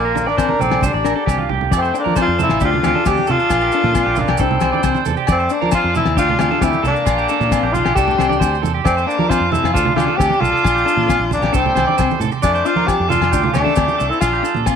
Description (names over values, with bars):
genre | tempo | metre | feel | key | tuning
highlife guitar band | 134 BPM | 4/4 | straight | F major | A4 = 438 Hz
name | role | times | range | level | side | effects
breathy tenor saxophone | melody | 0.0-14.6 s | Bb3 to G4 | -18 LUFS | left 2 dB | none
warm trumpet | second line | 0.0-14.6 s | G3 to Bb4 | -27 LUFS | left 11 dB | none
electric guitar at the edge of break-up | arpeggios | 0.0-14.8 s | F4 to D5 | -21 LUFS | right 14 dB | spring reverb
fingered electric bass | bass | 0.0-14.7 s | A1 to F3 | -22 LUFS | right 1 dB | none
clean electric guitar | accompaniment | 0.2-14.8 s | A3 to D4 | -26 LUFS | left 13 dB | analog chorus
congas | percussion | 0.2-14.7 s | none | -25 LUFS | right 9 dB | none
maracas | percussion | 0.2-14.8 s | none | -35 LUFS | right 15 dB | none
cloth-damped thuddy drum kit | drums | 0.3-14.8 s | kick drum, snare drum | -21 LUFS | left 2 dB | none
agogo bells | percussion | 0.4-14.8 s | none | -26 LUFS | left 12 dB | none
bright tonewheel organ | sustained chords | 1.7-14.8 s | A4 to D6 | -31 LUFS | equal | slow rotary speaker
room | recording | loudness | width
light reverb, studio reverb | 1960s-style stereo with parts hard left and right | -14 LUFS | side -7 dB against mid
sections
0.0-1.7 A section; 1.7-14.8 B section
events
drum fill 1.4-1.7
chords
0.0 Bbmaj7; 0.8 Csus2; 1.7 F6; 2.6 Dm; 3.5 Bbmaj7; 4.4 Csus2; 5.3 F6; 6.2 Dm; 7.1 Bbmaj7; 8.0 Csus2; 8.9 F6; 9.7 Dm; 10.6 Bbmaj7; 11.5 Csus2; 12.4 F6; 13.3 Dm; 14.2 Bbmaj7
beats
0.38 0.82 1.27 | 1.72 2.17 2.61 3.06 | 3.50 3.95 4.39 4.84 | 5.29 5.73 6.18 6.62 | 7.07 7.51 7.96 8.41 | 8.85 9.30 9.75 10.19 | 10.64 11.09 11.53 11.98 | 12.43 12.88 13.32 13.77 | 14.22 14.67